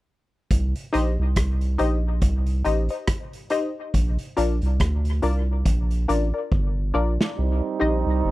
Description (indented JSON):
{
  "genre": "dub reggae",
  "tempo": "70 BPM",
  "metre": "4/4",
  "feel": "swing 58% on 16ths",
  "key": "C dorian",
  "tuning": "A4 = 440 Hz",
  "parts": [
    { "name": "soft dub sub bass", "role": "bass", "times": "0.5-8.3 s", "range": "G1 to D2", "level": "-22 LUFS", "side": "equal", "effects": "none" },
    { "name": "vintage drum kit", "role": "drums", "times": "0.5-7.4 s", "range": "hi-hat, kick drum, rim click, snare drum", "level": "-25 LUFS", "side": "equal", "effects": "none" },
    { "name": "filtered dub chord stab", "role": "stabs", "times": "0.9-8.0 s", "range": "D4 to Eb5", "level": "-26 LUFS", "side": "left 3 dB", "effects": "chorus, dub echo" },
    { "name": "clear trombone section", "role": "second line", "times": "7.4-8.3 s", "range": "G3 to Eb4", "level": "-25 LUFS", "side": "right 7 dB", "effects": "dub echo" }
  ],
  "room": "little or no reverb",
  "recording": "none",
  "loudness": "-21 LUFS",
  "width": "side -18 dB against mid",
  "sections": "0.5-7.4 A section",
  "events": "drum fill 6.5-7.4",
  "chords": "0.5 Cm; 3.9 Bb; 7.4 Cm",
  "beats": "| 0.51 1.36 2.22 3.08 | 3.94 4.80 5.65 6.51 | 7.37 8.23"
}